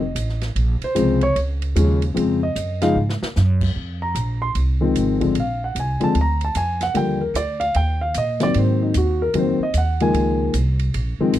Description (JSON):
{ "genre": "jazz piano trio", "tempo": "150 BPM", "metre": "4/4", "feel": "swing 64% on 8ths", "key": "Bb minor", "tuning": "A4 = 440 Hz", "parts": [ { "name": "dark grand piano", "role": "melody", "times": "0.0-11.3 s", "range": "Db3 to C6", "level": "-20 LUFS", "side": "left 2 dB", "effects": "none" }, { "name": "upright bass", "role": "bass", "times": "0.0-11.4 s", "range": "F1 to Bb2", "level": "-21 LUFS", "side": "right 1 dB", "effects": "none" }, { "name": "open jazz drum kit", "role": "drums", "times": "0.2-11.4 s", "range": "crash cymbal, hi-hat, kick drum, ride cymbal, snare drum", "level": "-33 LUFS", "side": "right 2 dB", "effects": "none" } ], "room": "little or no reverb", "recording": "dry, close 1970s-style studio recording", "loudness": "-18 LUFS", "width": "side -13 dB against mid", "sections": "0.0-3.8 A section; 3.8-11.4 A section", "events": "grand piano solo 0.0-11.4; drum fill 3.0-3.4", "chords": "0.0 F7; 0.6 Bbm9; 3.8 Fm7; 5.4 Bb7; 6.9 Ebmaj7; 8.5 Ab7; 10.1 Dbmaj7" }